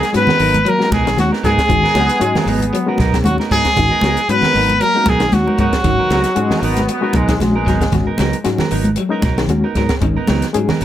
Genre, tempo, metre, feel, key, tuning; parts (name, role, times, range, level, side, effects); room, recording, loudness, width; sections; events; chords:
afrobeat; 115 BPM; 4/4; swing 54% on 16ths; G# minor; A4 = 442 Hz
clear trumpet; melody; 0.0-7.1 s; F#4 to B4; -16 LUFS; equal
trombone with bucket mute; second line; 0.0-7.1 s; F#3 to B3; -24 LUFS; right 2 dB
clean electric guitar; arpeggios; 0.0-10.8 s; B2 to F#3; -25 LUFS; left 5 dB; lush chorus
clean electric guitar; stabs; 0.0-10.8 s; F#3 to A#4; -23 LUFS; right 7 dB; lush chorus
compact cocktail drum kit; drums; 0.0-10.8 s; hi-hat, kick drum, snare drum; -21 LUFS; equal
reed electric piano; accompaniment; 0.1-10.8 s; G#3 to G#4; -21 LUFS; left 5 dB; tremolo
fingered electric bass; bass; 0.1-10.8 s; G#1 to G#2; -20 LUFS; equal
congas; percussion; 0.1-10.8 s; -20 LUFS; right 2 dB
brilliant trombone section; second line; 2.0-8.4 s; F#3 to B3; -23 LUFS; left 2 dB
light reverb, small room ambience; -13 LUFS; side -12 dB against mid
0.0-10.8 A section
0.0 G#m9